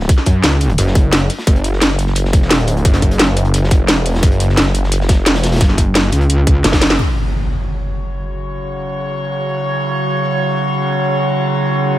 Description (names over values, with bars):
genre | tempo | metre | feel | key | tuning
dark technical drum and bass | 174 BPM | 4/4 | straight | unclear | A4 = 444 Hz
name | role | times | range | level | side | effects
snarling distorted saw bass | bass | 0.0-7.0 s | F#1 to F#2 | -15 LUFS | equal | overdrive, sidechain pumping
crunchy breakbeat drum kit | drums | 0.0-7.0 s | hi-hat, snare drum | -25 LUFS | equal | high-pass filter on hats, high-pass filter on snare, high-pass filter on room
drum and bass drum kit | drums | 0.1-7.1 s | crash cymbal, hi-hat, snare drum | -16 LUFS | equal | low-pass filter on hats, low-pass filter on snare, low-pass filter on cymbals, low-pass filter on room
electronic kick drum | drums | 0.1-6.8 s | none | -12 LUFS | equal | none
metallic wobble bass | bass | 0.4-0.8, 5.6-6.6 s | F#1 to C#2 | -13 LUFS | equal | distortion, chorus
metallic inharmonic drone | sustained chords | 7.8-12.0 s | C#3 to C#5 | -17 LUFS | right 1 dB | chorus, built-in reverb, sidechain pumping
impact | sound effects | 7.0-8.4 s | none | -20 LUFS | equal | none
room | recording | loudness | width
light reverb | none | -12 LUFS | side -14 dB against mid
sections
0.0-7.0 A section; 7.0-12.0 B section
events
drum fill 6.6-7.0; band accent 6.9; impact 7.0-8.4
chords
0.0 F#5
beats
| 0.09 0.44 0.78 1.13 | 1.47 1.81 2.16 2.50 | 2.85 3.19 3.54 3.88 | 4.23 4.57 4.92 5.26 | 5.61 5.95 6.30 6.64 | 6.99 7.33 7.68 8.02 | 8.37 8.71 9.06 9.40 | 9.75 10.09 10.44 10.78 | 11.13 11.47 11.81